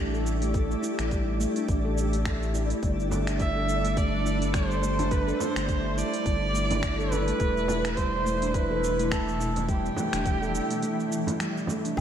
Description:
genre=organic downtempo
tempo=105 BPM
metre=4/4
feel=swing 57% on 16ths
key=unclear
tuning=A4 = 439 Hz
part: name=granular cloud pad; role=sustained chords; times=0.0-12.0 s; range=B2 to A4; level=-33 LUFS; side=left 1 dB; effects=built-in reverb, vintage 12-bit sampler grit, sidechain pumping, shimmer reverb
part: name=round analog bass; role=bass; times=0.0-12.0 s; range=E1 to A1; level=-30 LUFS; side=equal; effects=sidechain pumping
part: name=twinkling granular texture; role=texture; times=0.0-12.0 s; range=D4 to D5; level=-39 LUFS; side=left 1 dB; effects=built-in reverb, analog chorus, shimmer reverb
part: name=handpan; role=arpeggios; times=0.1-12.0 s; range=G3 to A4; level=-31 LUFS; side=right 1 dB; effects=diffuse ambient delay, shimmer reverb
part: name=organic electronic drum kit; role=drums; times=0.1-12.0 s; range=cabasa, finger snaps, hi-hat, woodblock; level=-37 LUFS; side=right 1 dB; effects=studio reverb
part: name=electronic kick drum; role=drums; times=0.5-12.0 s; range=none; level=-28 LUFS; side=equal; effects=studio reverb
part: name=frame drum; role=percussion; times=3.1-11.8 s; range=none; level=-36 LUFS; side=right 2 dB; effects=none
part: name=clear kamancheh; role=melody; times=3.4-11.4 s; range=G4 to E5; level=-30 LUFS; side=right 2 dB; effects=diffuse ambient delay, shimmer reverb
room=wet lush hall reverb, RT60 2.0 s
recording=dreamy mix soaked in reverb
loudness=-24 LUFS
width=side -9 dB against mid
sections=0.0-12.0 A section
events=none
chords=0.0 A5; 2.8 G5; 7.4 Em

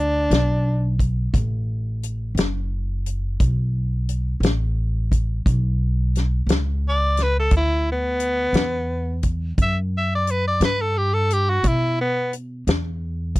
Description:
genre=slow blues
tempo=58 BPM (dotted quarters)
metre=12/8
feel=straight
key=B minor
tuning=A4 = 441 Hz
part: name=growling tenor saxophone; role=melody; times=0.0-12.3 s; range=B3 to E5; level=-22 LUFS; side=equal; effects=none
part: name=upright bass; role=bass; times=0.0-13.4 s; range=F#1 to B2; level=-22 LUFS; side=equal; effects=none
part: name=natural country drum kit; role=drums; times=0.3-13.4 s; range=hi-hat, kick drum, snare drum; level=-21 LUFS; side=left 1 dB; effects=none
room=little or no reverb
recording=dry, close 1970s-style studio recording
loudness=-19 LUFS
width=side -19 dB against mid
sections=0.0-13.4 A section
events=none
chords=0.0 B7(no3); 7.5 Gmaj7

